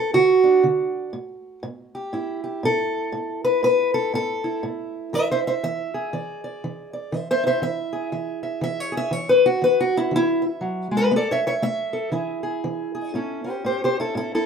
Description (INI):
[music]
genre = acoustic country blues, solo or duo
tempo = 120 BPM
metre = 4/4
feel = swing 60% on 8ths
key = A major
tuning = A4 = 440 Hz
[part]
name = fingerpicked steel-string acoustic guitar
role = solo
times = 0.0-14.5 s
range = A2 to E5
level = -20 LUFS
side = equal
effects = none
[sound]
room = moderate studio reverb, RT60 0.9 s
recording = minimal, uncompressed stereo recording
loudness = -20 LUFS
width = side -6 dB against mid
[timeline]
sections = 0.0-13.1 A section; 13.1-14.5 B section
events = steel-string acoustic guitar solo 0.0-13.1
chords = 0.0 N.C.; 1.1 A5; 5.1 E7; 11.1 A; 12.1 E; 13.1 A7